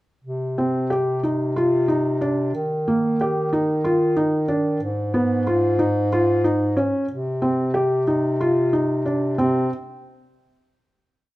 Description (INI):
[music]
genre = contemporary instrumental, chamber music in an uneven meter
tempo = 184 BPM (eighths)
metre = 7/8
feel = straight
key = C minor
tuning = A4 = 436 Hz
[part]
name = mellow bass clarinet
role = bass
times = 0.2-9.7 s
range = Ab2 to Eb3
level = -23 LUFS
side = equal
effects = none
[part]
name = felt-muted upright piano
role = arpeggios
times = 0.6-9.7 s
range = Bb3 to G4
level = -20 LUFS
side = equal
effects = none
[sound]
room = light reverb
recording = close, detailed microphones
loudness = -19 LUFS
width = side -17 dB against mid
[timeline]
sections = 0.3-9.4 A section; 9.4-11.4 final note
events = none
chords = 0.3 Cm; 2.5 Eb; 4.8 Abm; 7.1 Cm; 9.4 N.C.